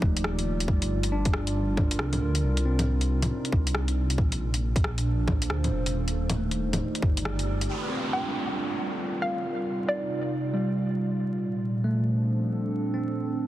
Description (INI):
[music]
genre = future garage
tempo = 137 BPM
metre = 4/4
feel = swing 63% on 16ths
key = G minor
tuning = A4 = 439 Hz
[part]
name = tine electric piano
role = accompaniment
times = 0.0-13.5 s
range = F3 to D4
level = -32 LUFS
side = equal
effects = vintage 12-bit sampler grit, sidechain pumping, dub echo
[part]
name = warbly tape-like pad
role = sustained chords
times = 0.0-13.5 s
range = Bb2 to D5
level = -30 LUFS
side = right 2 dB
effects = chorus, built-in reverb, vintage 12-bit sampler grit, sidechain pumping
[part]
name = dark detuned saw bass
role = bass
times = 0.0-7.7 s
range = Eb1 to D2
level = -28 LUFS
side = equal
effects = sidechain pumping
[part]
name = electronic kick drum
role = drums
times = 0.0-7.1 s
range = none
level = -25 LUFS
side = equal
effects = none
[part]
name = garage drum kit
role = drums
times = 0.2-7.7 s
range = bongos, hi-hat, rim click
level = -32 LUFS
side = left 1 dB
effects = soft clipping on snare
[part]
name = downlifter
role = sound effects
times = 7.7-11.2 s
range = none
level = -35 LUFS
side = equal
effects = none
[part]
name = hollow square pluck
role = melody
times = 8.1-10.2 s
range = D5 to G5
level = -33 LUFS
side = equal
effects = chorus, vintage 12-bit sampler grit, tape echo
[sound]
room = light reverb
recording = dense, heavily limited modern master, vinyl crackle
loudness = -24 LUFS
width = side -14 dB against mid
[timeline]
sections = 0.0-7.7 A section; 7.7-13.5 B section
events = band accent 7.3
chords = 0.0 Ebmaj9; 0.7 Gm9; 2.4 Cm11; 4.2 Bbmaj7; 5.9 Ebmaj9; 7.7 Gm9; 9.4 Cm7; 11.2 Bbmaj7; 12.9 Ebmaj7sus2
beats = 0.24 | 0.68 1.12 1.56 2.00 | 2.43 2.87 3.31 3.75 | 4.19 4.62 5.06 5.50 | 5.94 6.38 6.81 7.25 | 7.69 8.13 8.57 9.00 | 9.44 9.88 10.32 10.76 | 11.19 11.63 12.07 12.51 | 12.95 13.38